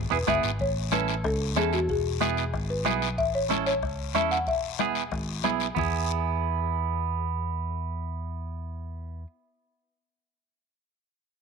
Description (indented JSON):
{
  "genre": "latin, cumbia",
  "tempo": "186 BPM",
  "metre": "4/4",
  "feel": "straight",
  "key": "E major",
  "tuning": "A4 = 439 Hz",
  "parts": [
    { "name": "folk marimba with soft mallets", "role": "melody", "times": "0.0-5.4 s", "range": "F#4 to F#5", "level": "-29 LUFS", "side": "left 3 dB", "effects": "none" },
    { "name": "fingered electric bass", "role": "bass", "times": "0.0-9.2 s", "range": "E1 to E2", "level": "-31 LUFS", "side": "equal", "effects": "none" },
    { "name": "semi-hollow electric guitar", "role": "accompaniment", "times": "0.1-9.3 s", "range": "B3 to A4", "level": "-29 LUFS", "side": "right 12 dB", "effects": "none" },
    { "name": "bombo", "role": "percussion", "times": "0.3-5.8 s", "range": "none", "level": "-36 LUFS", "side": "left 4 dB", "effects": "none" },
    { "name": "congas", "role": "percussion", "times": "0.3-5.8 s", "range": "none", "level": "-35 LUFS", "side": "left 16 dB", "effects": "none" },
    { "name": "guiro", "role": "percussion", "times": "0.3-5.8 s", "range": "none", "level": "-35 LUFS", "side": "left 15 dB", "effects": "none" }
  ],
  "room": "wet spring reverb, RT60 1.8 s, small room ambience",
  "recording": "1960s-style stereo with parts hard left and right",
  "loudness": "-25 LUFS",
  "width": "side -5 dB against mid",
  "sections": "0.6-5.8 A section; 5.8-8.4 B section",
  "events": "none",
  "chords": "0.0 E; 0.6 A; 1.9 E; 3.2 A; 4.5 E",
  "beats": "0.27 | 0.59 0.92 1.24 1.56 | 1.89 2.21 2.53 2.86 | 3.18 3.50 3.83 4.15 | 4.47 4.79 5.12 5.44 | 5.77 6.09 6.41 6.74 | 7.06 7.38 7.71 8.03"
}